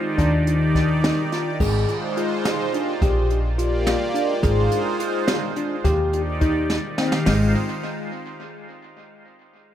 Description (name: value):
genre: progressive instrumental, band music in an uneven meter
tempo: 212 BPM (eighths)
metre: 5/8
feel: straight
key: Ab lydian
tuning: A4 = 440 Hz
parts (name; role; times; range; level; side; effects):
- phased analog pad; accompaniment; 0.0-7.5 s; Eb3 to F5; -24 LUFS; equal; phaser, chorus, tape echo
- tine electric piano; arpeggios; 0.0-7.5 s; Ab3 to Ab4; -26 LUFS; left 2 dB; medium stereo tremolo, tape echo
- upright bass; bass; 0.2-7.5 s; Ab1 to Eb2; -22 LUFS; equal; none
- jazz brush drum kit; drums; 0.2-7.4 s; crash cymbal, hi-hat, kick drum, snare drum; -26 LUFS; right 1 dB; tape echo
room: light reverb, small room ambience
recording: echo-heavy mix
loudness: -19 LUFS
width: side -10 dB against mid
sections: 0.0-1.6 A section; 1.6-7.3 B section; 7.3-8.7 C section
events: drum fill 6.7-7.3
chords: 0.2 Ebmaj7; 1.6 Ab6; 3.0 Bb6; 4.4 Ab6; 5.9 Ebmaj7; 7.3 Ab6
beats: | 0.18 0.47 0.75 1.03 1.32 | 1.60 1.88 2.17 2.45 2.73 | 3.02 3.30 3.58 3.87 4.15 | 4.43 4.72 5.00 5.28 5.57 | 5.85 6.13 6.42 6.70 6.99 | 7.27